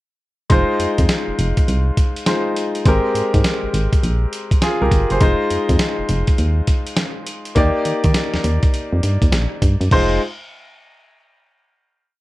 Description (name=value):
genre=R&B, new jack swing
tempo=102 BPM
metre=4/4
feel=swing 64% on 16ths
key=F dorian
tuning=A4 = 440 Hz
part: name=clear grand piano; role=accompaniment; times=0.5-10.2 s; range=Ab3 to D5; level=-20 LUFS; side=left 1 dB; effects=none
part: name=solid FM bass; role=bass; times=0.5-10.2 s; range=F1 to Eb3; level=-18 LUFS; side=equal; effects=none
part: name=dusty soul sampler-style drum kit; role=drums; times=0.5-10.1 s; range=crash cymbal, hi-hat, kick drum, snare drum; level=-18 LUFS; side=equal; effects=none
room=little or no reverb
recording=dark, warm production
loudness=-15 LUFS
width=side -18 dB against mid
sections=0.5-9.9 verse; 9.9-12.2 final chord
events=none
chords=0.5 Fm7; 2.9 Abmaj9; 5.2 Fm7; 7.6 Ebmaj7; 9.9 Fm7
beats=| 0.50 1.09 1.68 2.27 | 2.85 3.44 4.03 4.62 | 5.21 5.79 6.38 6.97 | 7.56 8.15 8.74 9.32 | 9.91